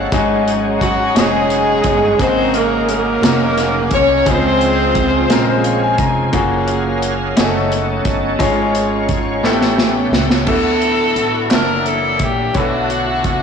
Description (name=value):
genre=slow gospel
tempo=58 BPM (dotted quarters)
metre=6/8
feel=straight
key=Db major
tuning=A4 = 441 Hz
part: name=bright grand piano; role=accompaniment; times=0.0-13.4 s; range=Ab2 to Bb5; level=-18 LUFS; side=left 2 dB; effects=none
part: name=bright tonewheel organ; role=sustained chords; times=0.0-13.4 s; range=Db3 to Ab5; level=-22 LUFS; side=right 4 dB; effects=slow rotary speaker, overdrive, chorus vibrato
part: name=upright bass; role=bass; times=0.0-13.4 s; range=F1 to D2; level=-23 LUFS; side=right 1 dB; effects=none
part: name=modern studio drum kit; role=drums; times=0.1-13.4 s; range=crash cymbal, hi-hat, kick drum, snare drum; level=-19 LUFS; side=right 1 dB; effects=none
part: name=breathy tenor saxophone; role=melody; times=0.8-5.6 s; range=Gb3 to Db4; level=-18 LUFS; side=right 4 dB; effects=none
part: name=edgy saxophone section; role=melody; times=0.8-5.7, 10.5-13.4 s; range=A3 to Db5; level=-17 LUFS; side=left 3 dB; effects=none
part: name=group handclap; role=percussion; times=11.5-11.8 s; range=none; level=-31 LUFS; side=right 7 dB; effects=none
room=moderate scoring stage reverb, RT60 2.0 s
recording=blown-out, overdriven recording, overdrive, studio ambience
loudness=-13 LUFS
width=side -6 dB against mid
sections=0.0-10.5 A section; 10.5-13.4 B section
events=grand piano fill 5.3-6.3; tonewheel organ fill 5.3-6.3; drum fill 9.4-10.5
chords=0.1 Ab7sus4; 2.2 Ab9sus4; 4.3 Dbmaj7; 6.3 Gbmaj9; 7.4 Gbm6; 8.4 Db/Ab; 9.4 A9; 10.5 D69; 11.5 F#7alt; 12.6 Bm11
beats=| 0.12 1.16 | 2.19 3.23 | 4.26 5.30 | 6.33 7.37 | 8.41 9.44 | 10.48 11.52 | 12.56